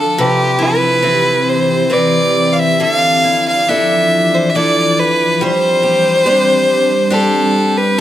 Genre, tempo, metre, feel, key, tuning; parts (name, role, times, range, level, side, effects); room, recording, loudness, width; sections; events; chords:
celtic folk, Celtic slow air; 70 BPM; 3/4; rubato; A4 = 440 Hz
clear fiddle; melody; 0.0-8.0 s; G4 to F5; -12 LUFS; equal
picked steel-string acoustic guitar; accompaniment; 0.0-8.0 s; C3 to C5; -18 LUFS; equal
glassy FM pad; sustained chords; 0.0-8.0 s; E3 to D5; -18 LUFS; left 2 dB; ensemble chorus, built-in reverb
moderate scoring stage reverb, RT60 1.5 s; -10 LUFS; side -12 dB against mid
0.0-8.0 A section
0.2 Cmaj7; 2.8 Dmadd9; 5.4 Gsus4